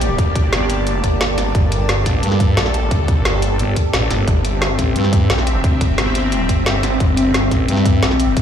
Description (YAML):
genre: dark technical drum and bass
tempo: 176 BPM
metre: 4/4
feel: straight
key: G dorian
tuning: A4 = 442 Hz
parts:
  - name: sweeping resonant pad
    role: sustained chords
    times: 0.0-8.4 s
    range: Bb3 to E5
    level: -23 LUFS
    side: left 1 dB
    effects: chorus, sidechain pumping
  - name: snarling distorted saw bass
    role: bass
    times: 0.0-8.4 s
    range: G1 to D2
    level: -19 LUFS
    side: equal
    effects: distortion, tube saturation, sidechain pumping
  - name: drum and bass drum kit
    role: drums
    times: 0.0-8.4 s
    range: hi-hat, snare drum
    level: -22 LUFS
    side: equal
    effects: none
  - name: granular cloud pad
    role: texture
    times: 0.0-8.4 s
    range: C4 to A5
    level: -23 LUFS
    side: equal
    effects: built-in reverb, sidechain pumping
  - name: electronic kick drum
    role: drums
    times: 0.2-8.4 s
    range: none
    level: -16 LUFS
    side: equal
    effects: none
  - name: growling FM bass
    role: bass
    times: 0.5-8.0 s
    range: G1 to G2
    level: -18 LUFS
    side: equal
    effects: none
room: digital ambience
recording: played on a big sound system in a bare room, large studio reverb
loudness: -14 LUFS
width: side -9 dB against mid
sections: 0.0-8.4 A section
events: none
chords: 0.0 Gm; 4.3 C/G